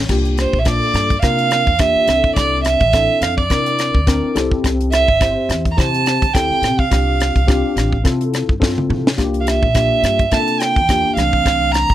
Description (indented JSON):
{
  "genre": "electric jazz fusion",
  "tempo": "106 BPM",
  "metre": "4/4",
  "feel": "swing 56% on 16ths",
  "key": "C mixolydian",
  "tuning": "A4 = 440 Hz",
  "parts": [
    { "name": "upright bass", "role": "bass", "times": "0.0-11.9 s", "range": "G1 to C3", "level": "-20 LUFS", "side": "equal", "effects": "none" },
    { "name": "mellow tine electric piano", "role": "accompaniment", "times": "0.1-11.9 s", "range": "E3 to C5", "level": "-21 LUFS", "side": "left 3 dB", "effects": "ensemble chorus" },
    { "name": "tight funk drum kit", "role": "drums", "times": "0.1-11.9 s", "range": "crash cymbal, hi-hat, kick drum, rim click, snare drum, toms", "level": "-18 LUFS", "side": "equal", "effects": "none" },
    { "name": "rich violin", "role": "melody", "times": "0.4-11.9 s", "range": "C5 to Bb5", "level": "-16 LUFS", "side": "right 4 dB", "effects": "none" }
  ],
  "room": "little or no reverb",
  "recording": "none",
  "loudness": "-13 LUFS",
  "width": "side -12 dB against mid",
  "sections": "0.1-11.9 A section",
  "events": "drum fill 8.6-9.2",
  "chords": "0.1 C9sus4; 2.1 Bbmaj9#11; 4.4 Am7; 6.9 Dm11; 9.2 C9sus4; 11.2 Bbmaj9#11"
}